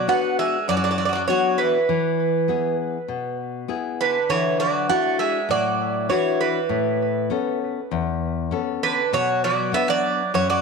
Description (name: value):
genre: greek folk, Greek bouzouki band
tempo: 99 BPM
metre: 4/4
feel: straight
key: A major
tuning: A4 = 440 Hz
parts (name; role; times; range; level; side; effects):
- Greek bouzouki; melody; 0.0-10.6 s; B4 to F#5; -22 LUFS; right 7 dB; tape echo
- Greek bouzouki; second line; 0.0-10.6 s; D3 to B3; -26 LUFS; equal; none
- nylon-string guitar; accompaniment; 0.0-10.6 s; E2 to A4; -25 LUFS; left 9 dB; none
room: wet echo chamber reverb, RT60 1.5 s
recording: 1960s-style stereo with parts hard left and right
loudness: -20 LUFS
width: side -4 dB against mid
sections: 0.0-10.6 A section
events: none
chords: 0.0 Bm; 1.9 E; 4.3 Dadd9; 6.7 Aadd9; 9.1 Bmadd9